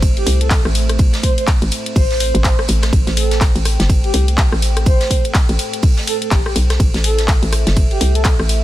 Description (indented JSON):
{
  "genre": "bass house",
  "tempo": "124 BPM",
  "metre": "4/4",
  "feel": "swing 59% on 16ths",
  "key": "A minor",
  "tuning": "A4 = 439 Hz",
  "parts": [
    { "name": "dark analog pad", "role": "sustained chords", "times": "0.0-8.6 s", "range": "A3 to G5", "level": "-27 LUFS", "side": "right 1 dB", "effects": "lush chorus, sidechain pumping" },
    { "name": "hollow knocking FM bass", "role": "bass", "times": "0.0-8.6 s", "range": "G1 to C2", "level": "-16 LUFS", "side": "equal", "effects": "tube saturation, sidechain pumping" },
    { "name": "electronic kick drum", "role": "drums", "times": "0.0-8.4 s", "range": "none", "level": "-14 LUFS", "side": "equal", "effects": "none" },
    { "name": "house drum kit", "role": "drums", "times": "0.0-8.6 s", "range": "handclaps, hi-hat, ride cymbal, rim click", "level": "-21 LUFS", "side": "left 1 dB", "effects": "none" },
    { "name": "vintage brush drum kit", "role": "drums", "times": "0.0-8.6 s", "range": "hi-hat, snare drum", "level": "-28 LUFS", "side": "right 2 dB", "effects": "sidechain pumping on hats, high-pass filter on hats, soft clipping on snare, high-pass filter on snare, high-pass filter on room" },
    { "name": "breathy flute-like synth lead", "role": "melody", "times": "0.2-8.3 s", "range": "G4 to C5", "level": "-24 LUFS", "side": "right 1 dB", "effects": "wide subtle chorus, dub echo" }
  ],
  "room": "digital ambience",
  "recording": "dense, heavily limited modern master",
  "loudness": "-13 LUFS",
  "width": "side -14 dB against mid",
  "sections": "0.0-8.6 A section",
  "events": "none",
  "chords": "0.0 Am",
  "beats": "0.02 0.51 | 0.99 1.48 1.96 2.44 | 2.93 3.41 3.90 4.38 | 4.86 5.35 5.83 6.31 | 6.80 7.28 7.77 8.25"
}